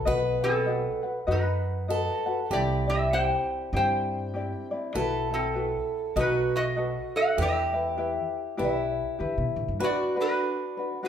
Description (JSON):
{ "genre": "Hawaiian", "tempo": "99 BPM", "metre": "4/4", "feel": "swing 60% on 8ths", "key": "E minor", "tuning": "A4 = 440 Hz", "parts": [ { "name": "picked old ladder-braced acoustic guitar", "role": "second line", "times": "0.0-11.1 s", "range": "E4 to B4", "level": "-32 LUFS", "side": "right 1 dB", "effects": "none" }, { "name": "ukulele", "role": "accompaniment", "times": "0.0-11.1 s", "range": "C4 to F#5", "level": "-30 LUFS", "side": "left 3 dB", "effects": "none" }, { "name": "upright bass", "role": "bass", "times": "0.0-9.8 s", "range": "B1 to D3", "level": "-31 LUFS", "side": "right 1 dB", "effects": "none" }, { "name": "metal-body resonator slide guitar", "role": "melody", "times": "0.4-11.1 s", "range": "C4 to G5", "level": "-28 LUFS", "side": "right 1 dB", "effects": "none" } ], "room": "wet large studio reverb, RT60 1.1 s", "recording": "band playing live in one room", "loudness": "-25 LUFS", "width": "side -8 dB against mid", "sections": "0.0-9.8 A section; 9.8-11.1 B section", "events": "none", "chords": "0.1 B; 2.5 Cadd9; 4.9 B7sus4; 6.2 B7; 7.4 Em; 9.8 D6" }